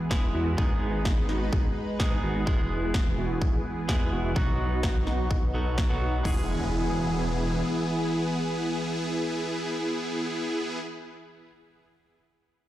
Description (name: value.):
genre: EDM, festival progressive house.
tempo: 127 BPM.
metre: 4/4.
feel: straight.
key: E major.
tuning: A4 = 440 Hz.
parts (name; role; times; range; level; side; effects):
clean electric guitar; accompaniment; 0.0-11.1 s; F#3 to G#4; -36 LUFS; right 2 dB; sidechain pumping, tape echo.
lush unison pad; sustained chords; 0.0-10.8 s; E3 to B4; -33 LUFS; equal; chorus, phaser, sidechain pumping.
supersaw chords; riff; 0.1-10.8 s; B3 to B4; -31 LUFS; equal; sidechain pumping, low-pass filter, tape echo.
wide detuned saw bass; bass; 0.1-7.6 s; E1 to G#2; -30 LUFS; equal; chorus, sidechain pumping.
big-room dance drum kit; drums; 0.1-6.4 s; hi-hat, kick drum, toms; -26 LUFS; equal; none.
electronic snare drum; drums; 0.1-5.9 s; none; -35 LUFS; equal; none.
impact; sound effects; 6.3-11.1 s; none; -37 LUFS; equal; none.
room: moderate concert hall reverb, RT60 1.9 s.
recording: played on a big sound system in a bare room, stone room reverb.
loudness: -25 LUFS.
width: side -14 dB against mid.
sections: 0.0-6.2 A section; 6.2-10.0 B section.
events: filter sweep on supersaw synth 0.0-6.2; filter sweep on detuned saw bass 0.0-6.2.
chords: 0.0 E; 0.6 G#m; 2.5 E; 4.4 B; 6.2 E.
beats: 0.11 | 0.58 1.05 1.53 2.00 | 2.47 2.94 3.42 3.89 | 4.36 4.83 5.30 5.78 | 6.25 6.72 7.20 7.67 | 8.14 8.61 9.09 9.56.